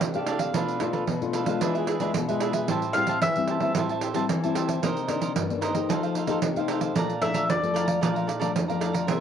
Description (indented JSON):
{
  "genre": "samba and choro",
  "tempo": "112 BPM",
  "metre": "4/4",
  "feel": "straight",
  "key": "unclear",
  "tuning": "A4 = 440 Hz",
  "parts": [
    { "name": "nylon-string guitar", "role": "accompaniment", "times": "0.0-9.2 s", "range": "F2 to G#4", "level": "-28 LUFS", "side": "left 8 dB", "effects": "cassette tape" },
    { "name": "pandeiro", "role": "percussion", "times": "0.0-9.2 s", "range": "none", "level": "-29 LUFS", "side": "right 6 dB", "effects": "none" },
    { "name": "cavaquinho", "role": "accompaniment", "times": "0.2-9.2 s", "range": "D4 to Bb5", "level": "-29 LUFS", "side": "right 5 dB", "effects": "cassette tape" },
    { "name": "mandolin", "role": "melody", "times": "2.9-3.7, 7.2-8.0 s", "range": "D5 to F5", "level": "-26 LUFS", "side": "left 1 dB", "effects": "none" }
  ],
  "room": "moderate spring reverb, RT60 1.4 s, studio reverb",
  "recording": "home recording on cassette",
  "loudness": "-23 LUFS",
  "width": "side -8 dB against mid",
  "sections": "0.0-9.2 A section",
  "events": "mandolin solo 0.0-9.2",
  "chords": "0.0 F69; 0.5 Bm7b5; 1.6 E7b9; 2.7 Am7; 4.8 Cm9; 5.9 F9; 7.0 Bbmaj7"
}